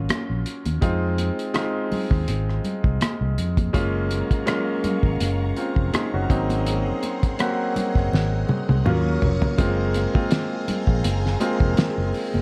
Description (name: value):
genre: lush 1970s-style soul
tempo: 82 BPM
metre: 4/4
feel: swing 54% on 16ths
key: unclear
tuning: A4 = 443 Hz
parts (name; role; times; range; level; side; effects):
- clear baby grand piano; accompaniment; 0.0-12.4 s; Gb3 to Ab4; -28 LUFS; equal; none
- fingered electric bass; bass; 0.0-12.4 s; F1 to F2; -26 LUFS; equal; none
- cloth-damped thuddy drum kit; drums; 0.1-12.3 s; hi-hat, kick drum, rim click, snare drum, toms; -26 LUFS; equal; none
- congas; percussion; 0.1-12.4 s; none; -33 LUFS; equal; none
- phased string machine; sustained chords; 3.7-12.4 s; Gb3 to Eb6; -36 LUFS; equal; ensemble chorus, phaser
room: little or no reverb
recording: dark, warm production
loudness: -23 LUFS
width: mono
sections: 0.0-9.6 A section; 9.6-12.4 B section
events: drum fill 8.1-9.6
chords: 0.0 Ebm7; 0.8 Fm7; 3.7 Gbmaj7; 6.3 Ab9; 8.9 Ebm9; 9.6 Gbmaj9#11